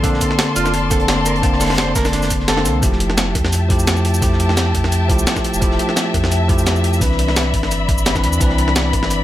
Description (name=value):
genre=liquid drum and bass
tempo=172 BPM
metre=4/4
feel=swing 54% on 16ths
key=F major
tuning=A4 = 440 Hz
part: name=bell-like tine electric piano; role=accompaniment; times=0.0-9.2 s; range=D3 to A5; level=-20 LUFS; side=equal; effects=ping-pong delay
part: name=dark symphonic string section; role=sustained chords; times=0.0-9.2 s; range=D5 to C6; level=-23 LUFS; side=left 3 dB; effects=sidechain pumping
part: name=mellow electric guitar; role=arpeggios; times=0.0-2.6 s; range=D4 to C5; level=-25 LUFS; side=right 3 dB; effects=ping-pong delay
part: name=warm sub bass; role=bass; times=0.0-9.2 s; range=F1 to F2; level=-20 LUFS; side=equal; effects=tube saturation
part: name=breakbeat sampler-style drum kit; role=drums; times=0.0-9.2 s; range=cabasa, hi-hat, snare drum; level=-20 LUFS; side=equal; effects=small room ambience
part: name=crunchy breakbeat drum kit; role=drums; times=0.0-9.2 s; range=hi-hat, snare drum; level=-29 LUFS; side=right 1 dB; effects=none
part: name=electronic kick drum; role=drums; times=0.0-9.0 s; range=none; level=-20 LUFS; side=equal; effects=small room ambience
room=light reverb, small room ambience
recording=none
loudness=-14 LUFS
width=side -13 dB against mid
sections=0.0-2.8 A section; 2.8-9.2 A section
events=drop 0.0-2.8, 2.8-9.2; band accent 2.5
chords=0.0 Bbmaj9; 2.8 Fmaj9; 7.0 Cmaj9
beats=| 0.04 0.39 0.73 1.08 | 1.43 1.78 2.13 2.48 | 2.83 3.18 3.53 3.88 | 4.22 4.57 4.92 5.27 | 5.62 5.97 6.32 6.67 | 7.01 7.36 7.71 8.06 | 8.41 8.76 9.11